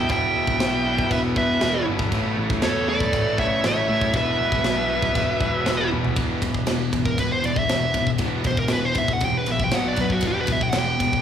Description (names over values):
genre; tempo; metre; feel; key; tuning
heavy metal; 118 BPM; 4/4; straight; E dorian; A4 = 439 Hz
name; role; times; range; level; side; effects
high-gain lead guitar; melody; 0.0-11.2 s; F#4 to G5; -24 LUFS; equal; distortion
high-gain lead guitar; second line; 0.0-5.9 s; A4 to E5; -29 LUFS; right 3 dB; distortion
pipe organ, soft reed; sustained chords; 0.0-6.2 s; C#3 to E5; -33 LUFS; right 1 dB; none
crunchy overdriven guitar; riff; 0.0-11.2 s; E2 to B3; -31 LUFS; left 2 dB; none
distorted electric guitar; riff; 0.0-11.2 s; E2 to B3; -28 LUFS; left 3 dB; distortion
scooped high-gain guitar; riff; 0.0-11.2 s; E2 to B3; -32 LUFS; right 4 dB; none
growling picked electric bass; bass; 0.0-11.2 s; E1 to A2; -30 LUFS; equal; overdrive
tight metal drum kit; drums; 0.1-11.2 s; crash cymbal, kick drum, ride cymbal, snare drum, toms; -25 LUFS; equal; none
room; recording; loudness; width
moderate church reverb, RT60 3.1 s; rough rehearsal-room recording; -19 LUFS; side -8 dB against mid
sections
0.0-6.2 A section; 6.2-11.2 B section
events
drum fill 5.9; lead electric guitar solo 6.2-11.2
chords
0.0 Em; 2.1 A; 4.1 Em; 6.2 E5; 9.7 B5; 10.2 Em